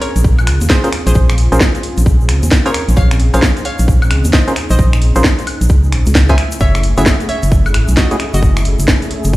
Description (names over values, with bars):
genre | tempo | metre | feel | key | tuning
UK garage, two-step garage | 132 BPM | 4/4 | swing 63% on 16ths | unclear | A4 = 440 Hz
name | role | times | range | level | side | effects
hollow square pluck | melody | 0.0-8.4 s | Gb4 to Ab5 | -23 LUFS | equal | chorus, tape echo
warm analog pad | sustained chords | 0.0-9.4 s | A3 to Ab4 | -24 LUFS | equal | chorus, sidechain pumping
garage drum kit | drums | 0.0-9.3 s | finger snaps, hi-hat, snare drum, woodblock | -17 LUFS | equal | none
organ-like FM bass | bass | 0.2-9.4 s | Gb1 to Eb2 | -12 LUFS | equal | tube saturation
electronic kick drum | drums | 0.2-9.4 s | none | -12 LUFS | equal | none
tube shaker | percussion | 0.2-9.4 s | none | -29 LUFS | left 2 dB | none
percussive organ stab | stabs | 0.8-8.2 s | A3 to C5 | -18 LUFS | equal | chorus, tape echo
room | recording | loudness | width
little or no reverb | played on a big sound system in a bare room, stone room reverb | -10 LUFS | side -18 dB against mid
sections
0.0-9.4 A section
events
none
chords
0.0 Bbm9; 6.4 Gbm9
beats
0.24 0.70 | 1.15 1.61 2.06 2.52 | 2.97 3.42 3.88 4.33 | 4.79 5.24 5.70 6.15 | 6.61 7.06 7.51 7.97 | 8.42 8.88 9.33